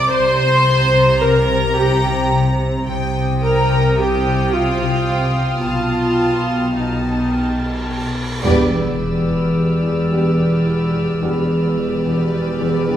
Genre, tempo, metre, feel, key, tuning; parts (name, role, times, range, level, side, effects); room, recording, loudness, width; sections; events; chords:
cinematic, suspense film score; 108 BPM; 5/4; straight; E minor from 8.4 s; A4 = 440 Hz
clear studio violin section; melody; 0.0-13.0 s; D5 to Bb5; -27 LUFS; left 2 dB
warm studio violin section; second line; 0.0-13.0 s; B4 to D6; -26 LUFS; right 1 dB
warm studio viola section; accompaniment; 0.0-13.0 s; D#4 to D5; -20 LUFS; equal
concert harp; riff; 0.0-13.0 s; E2 to C4; -20 LUFS; left 2 dB
dark studio double bass section; bass; 0.0-13.0 s; E1 to C2; -25 LUFS; right 2 dB
warm studio cello section; bass; 0.0-13.0 s; E2 to C3; -22 LUFS; right 1 dB
warm studio violin section; texture; 2.9-13.0 s; G5 to F6; -30 LUFS; left 1 dB
cymbal swell and sub drop; sound effects; 7.4-11.2 s; -27 LUFS; right 1 dB
warm trombone section; sustained chords; 8.4-13.0 s; G3 to B3; -24 LUFS; right 2 dB
warm French horn section; sustained chords; 8.5-13.0 s; D4 to G4; -26 LUFS; left 1 dB
wet recital hall reverb, RT60 1.4 s; recorded in a church or concert hall; -15 LUFS; side -10 dB against mid
0.0-8.4 A section; 8.4-13.0 B section
cymbal swell 7.4-8.4; band accent 8.4-9.0; impact 8.4-11.2
0.0 C5; 2.9 Eb/C; 5.7 B7; 8.4 Em7